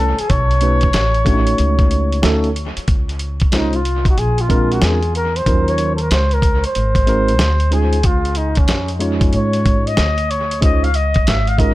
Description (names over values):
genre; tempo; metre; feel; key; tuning
hip hop, jazz-hop; 93 BPM; 4/4; swing 65% on 16ths; Db major; A4 = 444 Hz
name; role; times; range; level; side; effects
breathy flugelhorn; melody; 0.0-11.7 s; Db4 to F5; -20 LUFS; left 1 dB; dub echo
tine electric piano; accompaniment; 0.0-11.7 s; F3 to G#5; -20 LUFS; right 1 dB; medium stereo tremolo
upright bass; bass; 0.0-11.7 s; Ab1 to Ab2; -18 LUFS; equal; none
dusty soul sampler-style drum kit; drums; 0.2-11.7 s; hi-hat, kick drum, snare drum; -18 LUFS; equal; none
room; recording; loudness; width
small room ambience; echo-heavy mix; -13 LUFS; side -17 dB against mid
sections
0.0-2.9 A section; 2.9-11.7 B section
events
flugelhorn solo 2.9-11.7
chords
0.3 Cb9; 2.9 Dbmaj7; 4.2 Bb7; 5.5 Ebm7; 6.8 Ab7; 8.0 Db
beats
| 0.30 0.95 1.59 2.24 | 2.88 3.53 4.17 4.82 | 5.46 6.11 6.75 7.40 | 8.04 8.69 9.33 9.98 | 10.62 11.27